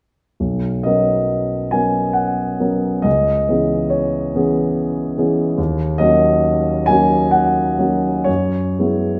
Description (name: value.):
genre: classical, impressionist solo piano.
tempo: 58-73 BPM.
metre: 3/4.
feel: rubato.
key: B major.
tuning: A4 = 440 Hz.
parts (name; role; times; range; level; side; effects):
warm concert grand piano; solo; 0.4-9.2 s; B1 to G#5; -17 LUFS; equal; none.
room: moderate recital hall reverb, RT60 1.4 s.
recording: none.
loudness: -17 LUFS.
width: mono.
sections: 0.4-9.2 A section.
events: none.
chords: 0.4 Bmaj9; 3.1 C#m7; 5.6 D#m7; 8.3 F#9sus4.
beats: | 0.40 1.29 2.17 | 3.05 3.92 4.76 | 5.58 6.44 7.34 | 8.27.